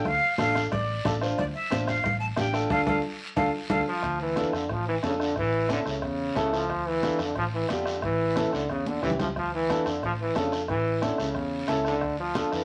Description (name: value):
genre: latin, cumbia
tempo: 180 BPM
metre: 4/4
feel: straight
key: D minor, D harmonic minor from 4.0 s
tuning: A4 = 440 Hz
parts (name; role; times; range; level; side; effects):
- breathy bright jazz flute; melody; 0.0-3.8 s; D5 to A5; -30 LUFS; equal; none
- warm upright piano; accompaniment; 0.0-12.6 s; C#4 to C5; -31 LUFS; equal; none
- congas; percussion; 0.0-12.5 s; none; -36 LUFS; equal; none
- vintage muted fingered electric bass; bass; 0.1-12.6 s; A1 to F2; -36 LUFS; equal; none
- bombo; percussion; 0.1-12.6 s; none; -39 LUFS; equal; none
- guiro; percussion; 0.1-12.6 s; none; -43 LUFS; equal; none
- brilliant trombone; second line; 3.9-12.6 s; C#3 to F3; -30 LUFS; equal; none
room: moderate studio reverb, RT60 0.7 s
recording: none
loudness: -27 LUFS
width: mono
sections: 0.0-4.0 A section; 4.0-12.6 B section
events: band accent 2.7-4.0; drum fill 3.0-4.0, 8.9-9.4; trombone solo 4.0-12.6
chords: 0.0 Dm; 5.4 A; 6.7 Dm; 8.0 A7; 9.4 Dm; 10.7 A; 12.0 Dm